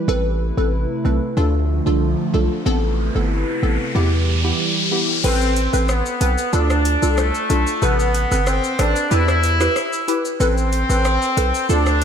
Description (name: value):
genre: dancehall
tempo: 93 BPM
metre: 4/4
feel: straight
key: A minor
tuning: A4 = 439 Hz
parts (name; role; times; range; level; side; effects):
- hollow soft pad; sustained chords; 0.0-5.2 s; C3 to B4; -25 LUFS; right 1 dB; chorus
- downlifter and riser; sound effects; 2.2-5.2 s; none; -26 LUFS; left 1 dB; none
- glassy wavetable pluck; accompaniment; 0.1-11.9 s; C3 to B4; -22 LUFS; right 1 dB; chorus, phaser
- hard-hitting 808-style bass; bass; 0.1-12.0 s; G1 to E2; -19 LUFS; equal; none
- warm horn section; second line; 5.2-12.0 s; A3 to E4; -20 LUFS; left 1 dB; ping-pong delay
- afro-pop drum kit; drums; 5.2-12.0 s; crash cymbal, hi-hat, rim click, shaker; -27 LUFS; left 1 dB; overdrive
room: light reverb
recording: none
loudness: -16 LUFS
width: side -8 dB against mid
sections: 0.0-5.2 A section; 5.2-12.0 B section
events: riser 2.2-5.2; kick muted 5.2-12.0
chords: 0.1 Amadd9; 1.4 Dm; 2.7 Amadd9; 4.0 Em; 5.2 Amadd9; 6.5 Dm; 7.8 Amadd9; 9.1 Em; 10.4 Amadd9